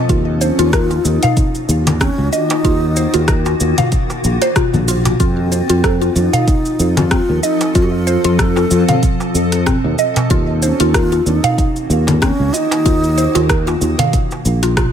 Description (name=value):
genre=organic downtempo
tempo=94 BPM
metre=4/4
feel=swing 55% on 16ths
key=unclear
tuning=A4 = 444 Hz
part: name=granular cloud pad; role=sustained chords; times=0.0-14.9 s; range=Eb3 to A4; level=-22 LUFS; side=left 1 dB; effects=built-in reverb, sidechain pumping
part: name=mallet-like synth pluck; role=arpeggios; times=0.0-14.9 s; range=C4 to F5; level=-20 LUFS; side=equal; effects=chorus, phaser, digital delay
part: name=sustaining fretless electric bass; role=bass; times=0.1-14.9 s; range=Bb1 to F2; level=-16 LUFS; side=equal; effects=lush chorus
part: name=afro-pop drum kit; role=drums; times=0.1-14.9 s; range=cabasa, congas, hi-hat, rim click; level=-20 LUFS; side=left 1 dB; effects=none
part: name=electronic kick drum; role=drums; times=0.1-14.9 s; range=none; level=-17 LUFS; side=equal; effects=none
part: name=breathy mellow low ney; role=melody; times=0.4-13.8 s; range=C4 to A4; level=-21 LUFS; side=equal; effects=ping-pong delay
part: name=darbuka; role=percussion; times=0.9-14.9 s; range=none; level=-22 LUFS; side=right 2 dB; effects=none
room=light reverb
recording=none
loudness=-12 LUFS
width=side -8 dB against mid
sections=0.0-14.9 A section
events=none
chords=0.1 Ebm; 5.2 F7; 10.3 Ebm